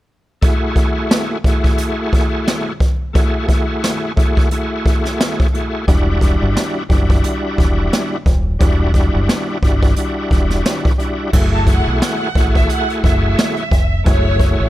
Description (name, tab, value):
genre	hip hop, boom-bap hip-hop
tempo	88 BPM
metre	4/4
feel	swing 57% on 16ths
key	unclear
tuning	A4 = 442 Hz
part	bright tonewheel organ	accompaniment	0.4-14.7 s	G3 to G#4	-20 LUFS	equal	overdrive, chorus vibrato, fast rotary speaker, cassette tape
part	jazz brush drum kit	drums	0.4-14.6 s	crash cymbal, hi-hat, kick drum, snare drum	-15 LUFS	equal	none
part	deep dub fingered electric bass	bass	5.9-14.7 s	D#1 to B1	-18 LUFS	equal	none
part	warm studio violin section	melody	11.5-14.7 s	C#5 to A5	-22 LUFS	right 2 dB	digital delay
room	little or no reverb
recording	none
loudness	-13 LUFS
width	side -15 dB against mid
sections	0.4-11.3 A section; 11.3-14.7 B section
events	none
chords	0.4 F#m9; 5.9 Em9; 11.3 F#m9